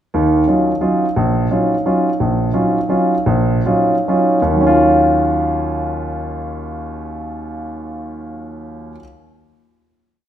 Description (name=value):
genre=jazz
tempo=122-175 BPM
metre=3/4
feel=swing 65% on 8ths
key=Eb minor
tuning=A4 = 440 Hz
part: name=warm grand piano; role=solo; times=0.1-9.0 s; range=Bb1 to F4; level=-15 LUFS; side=equal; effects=none
room=wet scoring stage reverb, RT60 1.7 s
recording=minimal, uncompressed stereo recording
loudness=-13 LUFS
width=side -10 dB against mid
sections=0.1-4.5 A section; 4.5-7.5 final chord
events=slowing down 2.2-4.5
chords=0.1 Ebm9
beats=| 0.12 0.46 0.81 | 1.15 1.50 1.84 | 2.18 2.53 2.88 | 3.26 3.65 4.07 | 4.54 5.03 5.52 | 6.01 6.50 6.99